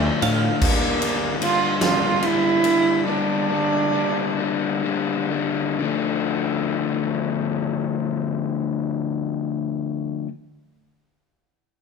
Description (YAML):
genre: post-rock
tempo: 40-50 BPM (dotted quarters)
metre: 6/8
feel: straight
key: D minor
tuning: A4 = 444 Hz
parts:
  - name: rich cello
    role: melody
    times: 0.0-4.8 s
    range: A3 to F4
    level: -22 LUFS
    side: right 5 dB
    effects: none
  - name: twelve-string electric guitar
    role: arpeggios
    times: 0.0-0.6 s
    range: D5 to F5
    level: -28 LUFS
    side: right 9 dB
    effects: none
  - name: crunchy overdriven guitar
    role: riff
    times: 0.0-10.3 s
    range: G2 to D4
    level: -22 LUFS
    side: left 7 dB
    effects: none
  - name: fuzz picked electric bass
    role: bass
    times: 0.0-0.5 s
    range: A2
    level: -23 LUFS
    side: right 1 dB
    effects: overdrive
  - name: huge arena drum kit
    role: drums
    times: 0.2-2.8 s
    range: crash cymbal, kick drum, ride cymbal, snare drum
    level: -25 LUFS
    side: right 1 dB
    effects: none
room: moderate large studio reverb, RT60 1.1 s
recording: band playing live in one room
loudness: -20 LUFS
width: side -5 dB against mid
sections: 0.0-5.8 A section; 5.8-8.8 B section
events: slowing down 0.6-5.8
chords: 0.0 Dm; 0.6 Gm; 5.8 Dm